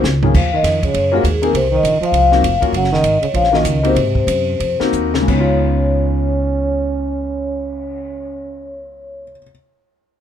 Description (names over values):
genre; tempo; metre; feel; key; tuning
jazz, small-group swing and bop; 170-201 BPM; 4/4; swing 62% on 8ths; Db mixolydian; A4 = 440 Hz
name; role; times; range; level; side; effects
vibraphone with soft mallets; melody; 0.0-9.3 s; Ab4 to Gb5; -18 LUFS; left 2 dB; plate reverb
warm grand piano; accompaniment; 0.0-9.5 s; Db3 to Ab4; -20 LUFS; left 5 dB; none
upright bass; bass; 0.0-9.3 s; F1 to Ab2; -19 LUFS; right 1 dB; none
compact cocktail drum kit; drums; 0.0-8.0 s; crash cymbal, cymbal swell, hi-hat, kick drum, ride cymbal, snare drum, toms; -23 LUFS; right 1 dB; none
breathy trombone; second line; 0.3-8.9 s; Ab2 to Db4; -22 LUFS; right 6 dB; none
room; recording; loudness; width
light reverb; close, detailed microphones; -13 LUFS; side -9 dB against mid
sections
0.3-5.3 A section; 5.3-8.1 B section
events
drum fill 0.0-0.3, 4.9-5.3; slowing down 2.7-5.3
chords
0.3 Ebm7; 1.5 Ebm69; 2.7 Ebm7; 4.0 Ab9; 5.3 Db9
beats
0.04 | 0.34 0.64 0.94 1.24 | 1.54 1.84 2.14 2.44 | 2.73 3.04 3.34 3.64 | 3.96 4.27 4.60 4.94 | 5.28 5.63 5.99 6.34 | 6.69 7.04 7.39 7.75